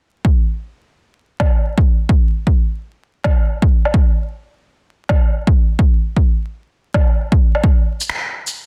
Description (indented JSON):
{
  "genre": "future garage",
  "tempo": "130 BPM",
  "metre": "4/4",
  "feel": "swing 63% on 16ths",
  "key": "none",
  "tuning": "none",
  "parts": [
    { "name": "electronic kick drum", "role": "drums", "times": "0.2-7.8 s", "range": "none", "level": "-15 LUFS", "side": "equal", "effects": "overdrive" },
    { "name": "electronic woodblock, shaker and finger snaps", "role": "drums", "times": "1.4-8.5 s", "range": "none", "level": "-25 LUFS", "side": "equal", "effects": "soft clipping on snare" }
  ],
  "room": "little or no reverb",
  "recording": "dense, heavily limited modern master, vinyl crackle",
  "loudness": "-16 LUFS",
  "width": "mono",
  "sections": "0.2-7.6 A section; 7.6-8.7 B section",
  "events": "none",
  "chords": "none"
}